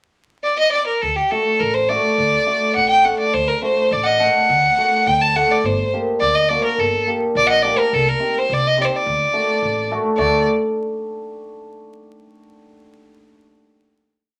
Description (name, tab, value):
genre	klezmer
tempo	105 BPM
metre	2/4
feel	straight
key	D phrygian dominant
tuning	A4 = 440 Hz
part	clear violin	melody	0.4-10.4 s	G4 to A5	-18 LUFS	equal	none
part	upright bass	bass	1.0-10.4 s	G1 to D2	-29 LUFS	equal	none
part	cimbalom	accompaniment	1.3-10.4 s	A3 to A4	-24 LUFS	equal	none
room	wet studio ambience, RT60 0.5 s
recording	vinyl crackle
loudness	-18 LUFS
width	mono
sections	0.0-1.0 pickup bar; 1.0-10.2 A section; 10.2-11.3 final chord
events	none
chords	0.0 N.C.; 1.0 D; 5.6 Gm; 7.9 Cm; 9.1 D